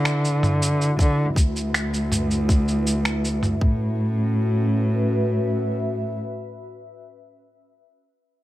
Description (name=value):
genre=folktronica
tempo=80 BPM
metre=4/4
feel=straight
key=A major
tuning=A4 = 438 Hz
part: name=warbly tape-like pad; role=sustained chords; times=0.0-7.8 s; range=C#4 to E5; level=-30 LUFS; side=equal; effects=chorus, built-in reverb, phaser
part: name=dark cello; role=bass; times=0.0-6.2 s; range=D2 to D3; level=-22 LUFS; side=equal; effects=none
part: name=lo-fi sampler-style drum kit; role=drums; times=0.1-3.6 s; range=finger snaps, shaker, toms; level=-26 LUFS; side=equal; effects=none
part: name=electronic kick drum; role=drums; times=1.0-3.8 s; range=none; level=-18 LUFS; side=equal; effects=none
room=studio reverb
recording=none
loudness=-20 LUFS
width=side -15 dB against mid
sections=0.0-4.0 A section; 4.0-7.0 B section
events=none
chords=0.0 Dadd9; 3.6 A